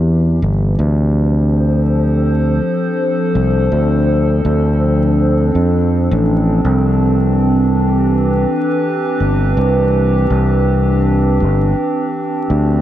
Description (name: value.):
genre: ambient dub.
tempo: 82 BPM.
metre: 4/4.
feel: swing 55% on 16ths.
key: D dorian.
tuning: A4 = 440 Hz.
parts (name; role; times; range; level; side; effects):
warbly tape-like pad; sustained chords; 0.0-12.8 s; E3 to C5; -16 LUFS; equal; chorus, built-in reverb.
overdriven fingered electric bass; bass; 0.0-12.8 s; G1 to F2; -13 LUFS; equal; none.
room: light reverb.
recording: vinyl crackle.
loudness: -12 LUFS.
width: side -12 dB against mid.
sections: 0.8-12.8 A section.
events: none.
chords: 0.0 Cmaj9; 0.8 Dm7; 6.6 Cmaj9.